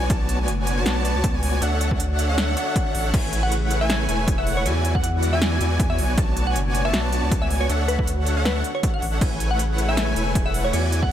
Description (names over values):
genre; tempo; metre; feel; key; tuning
future bass; 158 BPM; 4/4; swing 55% on 16ths, half-time; A major; A4 = 440 Hz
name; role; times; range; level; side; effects
airy breathy pad; sustained chords; 0.0-11.1 s; B2 to C#5; -34 LUFS; equal; chorus, phaser, sidechain pumping
airy dreamy lead; arpeggios; 0.0-11.1 s; F#5 to A5; -30 LUFS; equal; chorus, sidechain pumping, ping-pong delay
supersaw chords; riff; 0.0-11.1 s; E3 to A5; -27 LUFS; equal; sidechain pumping
saturated sub bass; bass; 0.0-11.1 s; E1 to E2; -23 LUFS; equal; sidechain pumping
big-room dance drum kit; drums; 0.1-11.0 s; crash cymbal, hi-hat, snare drum; -28 LUFS; equal; overdrive
electronic kick drum; drums; 0.1-11.1 s; none; -24 LUFS; equal; overdrive
glassy wavetable pluck; melody; 3.4-11.1 s; B4 to F#5; -29 LUFS; left 1 dB; chorus, cassette tape, sidechain pumping, ping-pong delay
room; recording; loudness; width
little or no reverb; none; -19 LUFS; side -10 dB against mid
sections
0.0-11.1 A section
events
none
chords
0.0 Bm9; 1.6 Dmaj7; 3.1 Amaj7; 4.7 E7; 6.0 Bm9; 7.7 Dmaj7; 9.2 Amaj7